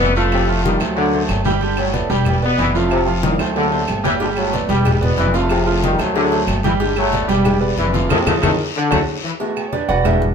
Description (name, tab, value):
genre	latin, salsa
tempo	185 BPM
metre	4/4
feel	straight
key	G major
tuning	A4 = 440 Hz
part	bright trombone section	melody	0.0-9.0 s	F#2 to E4	-22 LUFS	left 1 dB	none
part	bright trombone section	second line	0.0-9.3 s	C3 to G3	-21 LUFS	left 2 dB	none
part	clear concert grand piano	accompaniment	0.0-10.3 s	F3 to G5	-21 LUFS	right 4 dB	none
part	upright bass	bass	0.0-10.3 s	E1 to F2	-21 LUFS	equal	none
part	congas	percussion	0.0-10.3 s	none	-25 LUFS	left 3 dB	none
part	timbales and agogo bells	percussion	0.0-10.2 s	none	-29 LUFS	right 4 dB	none
part	guiro	percussion	0.2-9.0 s	none	-31 LUFS	left 6 dB	none
part	claves	percussion	0.3-10.2 s	none	-30 LUFS	right 4 dB	none
part	cowbell	percussion	4.2-10.2 s	none	-27 LUFS	left 2 dB	none
room	wet studio reverb, RT60 0.8 s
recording	band playing live in one room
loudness	-15 LUFS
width	side -6 dB against mid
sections	0.0-9.4 A section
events	drum fill 3.2-4.2, 8.6-9.4; band accent 8.1-9.4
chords	0.3 F7; 1.0 D7; 1.6 Gmaj7; 2.3 Em7; 2.9 F7; 3.6 D7; 4.2 Gmaj7; 4.9 Em7; 5.5 F7; 6.2 D7; 6.8 Gmaj7; 7.5 Em7; 8.1 F7; 8.8 D; 9.4 Gmaj7